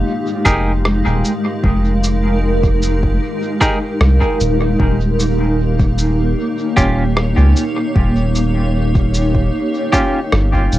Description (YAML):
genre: ambient dub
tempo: 76 BPM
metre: 4/4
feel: straight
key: unclear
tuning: A4 = 440 Hz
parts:
  - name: granular cloud pad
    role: sustained chords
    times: 0.0-10.8 s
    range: Ab3 to F5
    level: -18 LUFS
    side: equal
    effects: built-in reverb
  - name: soft dub sub bass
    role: bass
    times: 0.0-10.8 s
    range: Eb1 to Db2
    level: -15 LUFS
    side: equal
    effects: none
  - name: semi-hollow electric guitar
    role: stabs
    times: 0.5-10.2 s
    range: Db4 to Bb4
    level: -20 LUFS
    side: right 1 dB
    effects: tremolo, dub echo, plate reverb
  - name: electronic cabasa and rim click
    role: drums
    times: 0.5-10.8 s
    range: none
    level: -24 LUFS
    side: equal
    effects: cassette tape, dub echo
  - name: electronic kick drum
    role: drums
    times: 0.5-10.7 s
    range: none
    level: -18 LUFS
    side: equal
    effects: overdrive, cassette tape
room: light reverb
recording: home recording on cassette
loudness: -13 LUFS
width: side -15 dB against mid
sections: 0.0-10.8 A section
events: none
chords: 0.0 Fm11; 4.8 Eb9